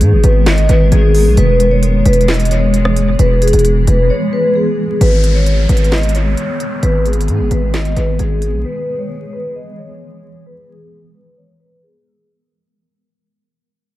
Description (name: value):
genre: hip hop, trap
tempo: 132 BPM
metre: 4/4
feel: half-time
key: unclear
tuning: A4 = 440 Hz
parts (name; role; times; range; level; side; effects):
- vibraphone with medium hard mallets; melody; 0.0-12.3 s; G#4 to D#5; -17 LUFS; left 1 dB; low-pass filter, dub echo
- granular cloud pad; sustained chords; 0.0-12.3 s; D#3 to A#4; -20 LUFS; equal; built-in reverb, low-pass filter
- distorted 808-style bass; bass; 0.0-8.6 s; E1 to G#2; -12 LUFS; equal; distortion
- trap drum kit; drums; 0.0-8.5 s; handclaps, hi-hat, rim click, snare drum; -22 LUFS; equal; dub echo
- downlifter; sound effects; 5.0-8.6 s; none; -28 LUFS; equal; none
room: little or no reverb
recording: echo-heavy mix, vinyl crackle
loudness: -11 LUFS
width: side -15 dB against mid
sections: 0.0-5.0 A section; 5.0-12.3 B section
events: break 4.1-5.0; fade-out 5.0-12.3; filter sweep 5.0-12.3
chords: 0.0 G#m; 1.4 E; 5.0 G#m; 8.6 E